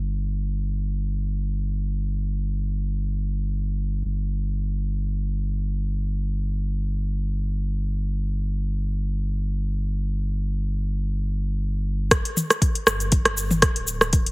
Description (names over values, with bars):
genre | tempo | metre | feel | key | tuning
afro house | free time | none | none | unclear | A4 = 440 Hz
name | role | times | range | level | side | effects
warm sub bass | bass | 0.0-14.3 s | D1 to G1 | -24 LUFS | equal | sidechain pumping
afro-pop drum kit | drums | 12.1-14.3 s | hi-hat, rim click, shaker, toms | -20 LUFS | equal | none
electronic kick drum | drums | 12.1-14.2 s | none | -21 LUFS | equal | none
room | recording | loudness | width
little or no reverb | heavily compressed radio sound | -22 LUFS | side -25 dB against mid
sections
0.0-12.1 A section; 12.1-14.3 B section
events
drop 12.1-14.3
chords
none